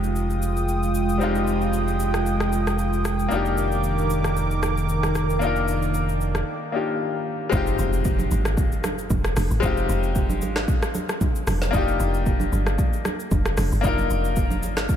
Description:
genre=amapiano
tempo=114 BPM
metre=4/4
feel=swing 55% on 16ths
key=F dorian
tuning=A4 = 439 Hz
part: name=bright grand piano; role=accompaniment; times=0.0-15.0 s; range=G3 to Bb4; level=-27 LUFS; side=left 4 dB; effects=none
part: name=warm analog pad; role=sustained chords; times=0.0-7.5 s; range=Eb3 to Eb6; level=-25 LUFS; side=right 2 dB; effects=chorus
part: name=sub bass with octave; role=bass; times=0.0-6.4 s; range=F1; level=-25 LUFS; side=equal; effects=none
part: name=afro-pop drum kit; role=drums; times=0.0-15.0 s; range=hi-hat, kick drum, rim click, shaker, snare drum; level=-26 LUFS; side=equal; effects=none
part: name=deep log drum bass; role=bass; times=7.5-14.9 s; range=F1 to Ab1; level=-24 LUFS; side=equal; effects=none
part: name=congas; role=percussion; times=7.5-14.8 s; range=none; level=-31 LUFS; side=right 3 dB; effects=none
part: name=impact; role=sound effects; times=7.7-9.6 s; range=none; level=-33 LUFS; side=equal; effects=none
room=moderate cathedral reverb, RT60 4.6 s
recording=dreamy mix soaked in reverb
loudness=-20 LUFS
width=side -9 dB against mid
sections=0.0-7.5 A section; 7.5-15.0 B section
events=break 6.5-7.5; drop 7.5-15.0; impact 7.5-9.6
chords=0.0 Fm9; 3.3 Ebmaj7/F; 7.5 Fm9; 11.7 Ebmaj7/F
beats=0.15 0.68 | 1.21 1.73 2.26 2.79 | 3.31 3.84 4.37 4.89 | 5.42 5.95 6.47 7.00 | 7.52 8.05 8.58 9.10 | 9.63 10.15 10.68 11.21 | 11.73 12.26 12.79 13.31 | 13.84 14.37 14.89

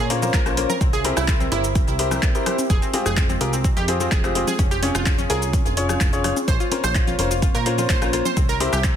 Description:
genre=progressive house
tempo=127 BPM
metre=4/4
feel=straight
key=F harmonic minor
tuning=A4 = 443 Hz
part: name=warm analog pad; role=sustained chords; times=0.0-9.0 s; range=Ab3 to E5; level=-30 LUFS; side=right 3 dB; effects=chorus, sidechain pumping
part: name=analog pluck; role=arpeggios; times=0.0-8.9 s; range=Bb3 to C5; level=-26 LUFS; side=right 1 dB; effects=chorus, sidechain pumping, digital delay
part: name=plucky analog bass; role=bass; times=0.0-9.0 s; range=F1 to Bb2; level=-26 LUFS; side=equal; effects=sidechain pumping
part: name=clear concert grand piano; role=stabs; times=0.1-8.7 s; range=Db4 to Db5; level=-25 LUFS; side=left 3 dB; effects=sidechain pumping, digital delay
part: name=deep house drum kit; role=drums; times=0.1-8.9 s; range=handclaps, hi-hat, shaker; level=-27 LUFS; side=equal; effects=small room ambience
part: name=electronic congas and rim click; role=percussion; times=0.2-8.8 s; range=none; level=-30 LUFS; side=left 6 dB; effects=sidechain pumping on perc, small room ambience, soft clipping on snare, sidechain pumping on snare
part: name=electronic kick drum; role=drums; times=0.3-8.9 s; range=none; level=-20 LUFS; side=equal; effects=small room ambience
room=light reverb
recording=dense, heavily limited modern master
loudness=-18 LUFS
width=side -9 dB against mid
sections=0.0-9.0 A section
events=none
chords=0.0 Bbmadd9; 0.8 C7; 2.7 Fmadd9; 4.6 Db/F; 6.5 Bbmadd9; 8.4 C7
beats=0.34 | 0.81 1.28 1.75 2.23 | 2.70 3.17 3.64 4.12 | 4.59 5.06 5.53 6.01 | 6.48 6.95 7.42 7.90 | 8.37 8.84

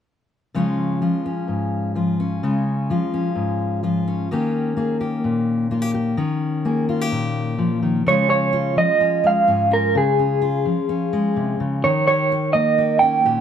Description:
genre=folk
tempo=127 BPM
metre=4/4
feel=straight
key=Db major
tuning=A4 = 437 Hz
part: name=fingerpicked steel-string acoustic guitar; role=accompaniment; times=0.5-13.4 s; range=Ab2 to Ab4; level=-20 LUFS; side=left 2 dB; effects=none
part: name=electric guitar through a small old amp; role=melody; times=8.1-13.4 s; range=Ab4 to G5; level=-17 LUFS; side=right 3 dB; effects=tremolo
room=moderate studio ambience, RT60 0.5 s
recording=band playing live in one room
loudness=-18 LUFS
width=side -8 dB against mid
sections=0.5-8.1 A section; 8.1-13.4 B section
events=none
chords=0.5 Db; 4.3 Eb7; 8.1 Db; 11.8 Eb7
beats=| 0.53 1.00 1.47 1.94 | 2.41 2.88 3.35 3.83 | 4.30 4.77 5.24 5.71 | 6.18 6.65 7.12 7.59 | 8.06 8.53 9.01 9.47 | 9.95 10.42 10.89 11.36 | 11.83 12.30 12.77 13.24

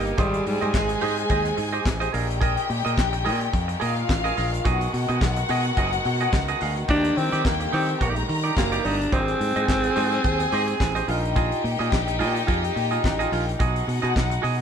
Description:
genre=disco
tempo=107 BPM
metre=4/4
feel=swing 56% on 16ths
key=unclear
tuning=A4 = 442 Hz
part: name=breathy alto saxophone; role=melody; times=0.0-1.9, 6.9-11.1 s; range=G3 to D4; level=-26 LUFS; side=equal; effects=none
part: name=warm studio string section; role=second line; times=0.0-14.6 s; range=Eb4 to Bb5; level=-28 LUFS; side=left 3 dB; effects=none
part: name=semi-hollow electric guitar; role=accompaniment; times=0.0-14.6 s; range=Eb4 to F5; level=-29 LUFS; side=right 6 dB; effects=none
part: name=muted French horn section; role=sustained chords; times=0.0-14.6 s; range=Bb2 to Ab4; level=-32 LUFS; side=right 2 dB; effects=none
part: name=fingered electric bass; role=bass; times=0.0-14.6 s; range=F#1 to Eb3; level=-27 LUFS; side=equal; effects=none
part: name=damped 70s drum kit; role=drums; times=0.1-14.6 s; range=handclaps, hi-hat, kick drum, snare drum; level=-27 LUFS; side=equal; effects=none
room=moderate stone room reverb, RT60 1.2 s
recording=band playing live in one room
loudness=-21 LUFS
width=side -8 dB against mid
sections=0.0-14.6 A section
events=none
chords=0.2 Abmaj7; 2.1 Bb7sus4; 4.7 B6; 6.9 Ebmaj7; 9.1 Abmaj7; 11.1 Bb7sus4; 13.6 B6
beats=| 0.18 0.74 1.30 1.86 | 2.42 2.98 3.54 4.09 | 4.65 5.21 5.77 6.33 | 6.89 7.45 8.01 8.56 | 9.12 9.68 10.24 10.80 | 11.36 11.92 12.48 13.04 | 13.60 14.16

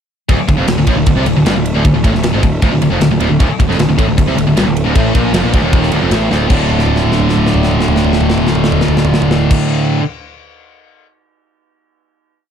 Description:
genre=heavy metal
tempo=155 BPM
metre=4/4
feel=straight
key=D minor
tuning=A4 = 440 Hz
part: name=scooped high-gain guitar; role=riff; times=0.3-10.0 s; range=D2 to D3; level=-16 LUFS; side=left 9 dB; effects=distortion
part: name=tight distorted guitar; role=riff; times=0.3-10.0 s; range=D2 to D3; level=-16 LUFS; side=right 11 dB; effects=distortion
part: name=fuzz picked electric bass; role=bass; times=0.3-9.5 s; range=D1 to C2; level=-17 LUFS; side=equal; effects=overdrive
part: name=tight metal drum kit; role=drums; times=0.3-11.1 s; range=crash cymbal, kick drum, ride cymbal, snare drum, toms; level=-16 LUFS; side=equal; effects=none
room=light reverb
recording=dark, warm production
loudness=-10 LUFS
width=side -8 dB against mid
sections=0.3-6.5 riff; 6.5-9.6 final chord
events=drum fill 6.3, 6.7-9.5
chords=0.3 Dm; 6.5 D5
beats=| 0.29 0.68 1.07 1.46 | 1.85 2.24 2.63 3.02 | 3.40 3.79 4.18 4.57 | 4.95 5.34 5.73 6.11 | 6.50 6.88 7.27 7.66 | 8.05 8.43 8.82 9.21

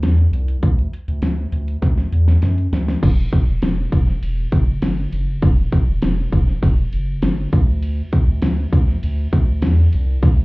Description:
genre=piano-driven pop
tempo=100 BPM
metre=4/4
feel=straight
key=unclear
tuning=A4 = 440 Hz
part: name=round analog bass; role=bass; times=0.0-10.4 s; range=E1 to F#2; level=-18 LUFS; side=equal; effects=none
part: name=pop drum kit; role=drums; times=0.0-10.4 s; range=crash cymbal, hi-hat, kick drum, ride cymbal, snare drum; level=-17 LUFS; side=equal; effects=none
room=light reverb, digital ambience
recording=heard muffled through a wall, club ambience, EQ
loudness=-15 LUFS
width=side -23 dB against mid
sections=0.0-3.0 A section; 3.0-10.4 B section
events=drum fill 1.8-3.0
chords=none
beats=0.03 | 0.63 1.23 1.83 2.43 | 3.03 3.63 4.23 4.83 | 5.43 6.03 6.63 7.23 | 7.83 8.43 9.03 9.63 | 10.22

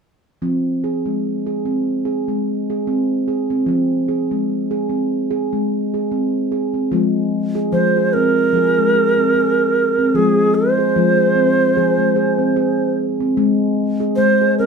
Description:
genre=world meditative, meditative tuned percussion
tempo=74 BPM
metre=4/4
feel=swing 55% on 16ths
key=F minor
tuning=A4 = 442 Hz
part: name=handpan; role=arpeggios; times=0.4-14.7 s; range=F3 to Ab4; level=-17 LUFS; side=left 1 dB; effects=none
part: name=reedy Native American-style cedar flute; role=melody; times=7.7-14.7 s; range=Ab4 to C5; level=-16 LUFS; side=right 3 dB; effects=none
room=wet small room reverb, RT60 0.5 s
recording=none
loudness=-15 LUFS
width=side -5 dB against mid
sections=0.4-6.9 A section; 6.9-14.7 B section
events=none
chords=0.4 Fm; 13.4 Ab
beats=| 0.41 1.23 2.04 2.86 | 3.67 4.48 5.30 6.11 | 6.92 7.73 8.54 9.35 | 10.15 10.96 11.77 12.57 | 13.38 14.19

